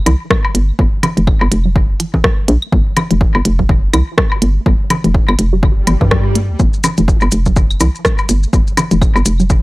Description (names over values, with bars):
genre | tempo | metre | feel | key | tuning
minimal techno | 124 BPM | 4/4 | swing 58% on 16ths | G minor | A4 = 438 Hz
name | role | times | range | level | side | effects
resonant blip pluck | riff | 0.1-9.6 s | D3 to Bb3 | -20 LUFS | equal | chorus, phaser, sidechain pumping, analog delay
hollow knocking FM bass | bass | 0.1-9.6 s | F1 to G2 | -14 LUFS | equal | sidechain pumping
minimal click drum kit | drums | 0.1-9.4 s | hi-hat, rim click | -16 LUFS | right 1 dB | overdrive
woodblock, congas and claves | percussion | 0.1-9.2 s | none | -18 LUFS | left 1 dB | tape echo
electronic kick drum | drums | 0.3-9.6 s | none | -14 LUFS | equal | none
swell | sound effects | 5.8-6.6 s | none | -23 LUFS | right 1 dB | none
maracas | percussion | 6.6-9.6 s | none | -24 LUFS | left 3 dB | none
room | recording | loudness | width
little or no reverb | dry, gritty hardware recording | -11 LUFS | side -20 dB against mid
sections
0.0-9.6 A section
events
filter sweep on synth arpeggio sound 0.0-9.6; swell 5.8-6.6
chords
none